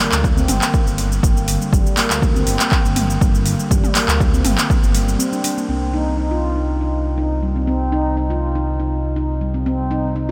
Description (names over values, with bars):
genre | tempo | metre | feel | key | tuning
afro house | 121 BPM | 4/4 | straight | C minor | A4 = 438 Hz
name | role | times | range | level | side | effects
handpan | arpeggios | 0.0-10.3 s | D3 to F4 | -24 LUFS | equal | sidechain pumping, low-pass filter, analog delay
deep house drum kit | drums | 0.0-5.7 s | cabasa, handclaps, hi-hat, toms | -24 LUFS | equal | overdrive, low-pass filter on snare, low-pass filter on perc, low-pass filter on toms, low-pass filter on hats
smooth synth bass | bass | 0.1-10.3 s | G1 to D2 | -23 LUFS | equal | sidechain pumping
electronic kick drum | drums | 0.2-4.8 s | none | -20 LUFS | equal | overdrive
room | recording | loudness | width
moderate huge ambient reverb, RT60 8.4 s | dreamy mix soaked in reverb | -18 LUFS | mono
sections
0.0-5.7 A section; 5.7-10.3 B section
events
none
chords
0.0 Gm; 5.7 Cm